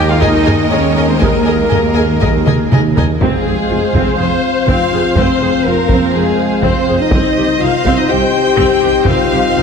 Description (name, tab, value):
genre	cinematic, epic orchestral film score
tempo	123 BPM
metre	4/4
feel	straight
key	F minor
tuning	A4 = 441 Hz
part	rich symphonic violin section	melody	0.0-9.6 s	Bb4 to F5	-24 LUFS	left 2 dB	none
part	rich chamber violin section	second line	0.0-9.6 s	Ab4 to Ab5	-20 LUFS	left 2 dB	none
part	warm studio viola section	accompaniment	0.0-9.6 s	C4 to C5	-18 LUFS	equal	none
part	clear trombone section	sustained chords	0.0-9.6 s	Eb3 to C4	-22 LUFS	right 2 dB	none
part	dark French horn section	sustained chords	0.0-9.6 s	Ab3 to G4	-17 LUFS	left 5 dB	none
part	rich symphonic string section	sustained chords	0.0-3.2 s	Ab3 to Eb5	-21 LUFS	left 2 dB	none
part	mellow trumpet	stabs	0.0-2.7 s	Bb4 to G5	-23 LUFS	right 1 dB	none
part	mellow tuba	bass	0.0-9.6 s	F1 to Eb2	-23 LUFS	right 4 dB	none
part	rich symphonic double bass section	bass	0.0-9.6 s	F1 to Eb2	-20 LUFS	right 3 dB	none
part	warm symphonic cello section	bass	0.0-9.6 s	F2 to F4	-24 LUFS	right 1 dB	none
part	taiko ensemble	drums	0.2-9.5 s	none	-17 LUFS	equal	none
room	wet scoring stage reverb, RT60 1.7 s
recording	heavily compressed radio sound, multiband compression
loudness	-10 LUFS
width	side -6 dB against mid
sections	0.0-3.2 A section; 3.2-9.6 B section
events	drum fill 2.5-3.2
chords	0.0 Ebsus4; 3.2 Fm; 7.1 Cm